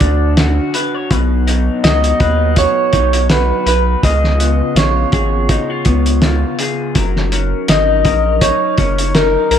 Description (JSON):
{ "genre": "indie pop, bedroom pop", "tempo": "82 BPM", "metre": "4/4", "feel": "swing 55% on 16ths", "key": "F# major", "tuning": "A4 = 439 Hz", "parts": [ { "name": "soft electric-piano-like synth keys", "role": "melody", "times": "0.0-9.6 s", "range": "A#4 to D#5", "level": "-16 LUFS", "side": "equal", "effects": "lush chorus, slapback echo" }, { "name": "electric guitar through a small old amp", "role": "accompaniment", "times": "0.0-9.6 s", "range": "B2 to C#5", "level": "-20 LUFS", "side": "left 4 dB", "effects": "wide subtle chorus, warbly pitch drift" }, { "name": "warbly tape-like pad", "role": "sustained chords", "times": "0.0-9.6 s", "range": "C#3 to A#4", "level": "-24 LUFS", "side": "right 2 dB", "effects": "chorus, built-in reverb" }, { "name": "round analog bass", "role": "bass", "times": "0.0-9.6 s", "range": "F#1 to D#2", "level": "-16 LUFS", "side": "equal", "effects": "none" }, { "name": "cloth-damped thuddy drum kit", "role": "drums", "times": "0.0-9.6 s", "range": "hi-hat, kick drum, snare drum", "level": "-16 LUFS", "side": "equal", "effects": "none" } ], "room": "small room ambience", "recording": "none", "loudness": "-12 LUFS", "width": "side -9 dB against mid", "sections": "0.0-9.6 A section", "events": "none", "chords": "0.0 Dmaj7; 1.1 B; 4.0 C#7; 7.0 F#6" }